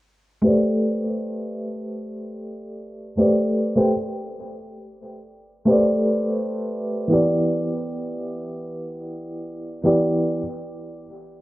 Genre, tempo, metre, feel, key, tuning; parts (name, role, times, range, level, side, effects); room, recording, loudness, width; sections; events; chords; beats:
trip hop; 72 BPM; 4/4; swing 57% on 16ths; A minor; A4 = 440 Hz
felt-muted upright piano; accompaniment; 0.4-10.4 s; E3 to G5; -21 LUFS; equal; tremolo, low-pass filter, tape echo
moderate plate reverb, RT60 2.4 s; worn, warbling old tape, cassette tape, warbly pitch drift, low-pass filter, faint mains hum; -20 LUFS; side -17 dB against mid
0.4-11.4 A section
filter sweep on felt piano 0.4-11.4; filter sweep 0.4-11.4
0.4 Am11; 7.1 Em7
| 0.43 1.27 2.10 2.94 | 3.77 4.60 5.43 6.27 | 7.10 7.93 8.77 9.60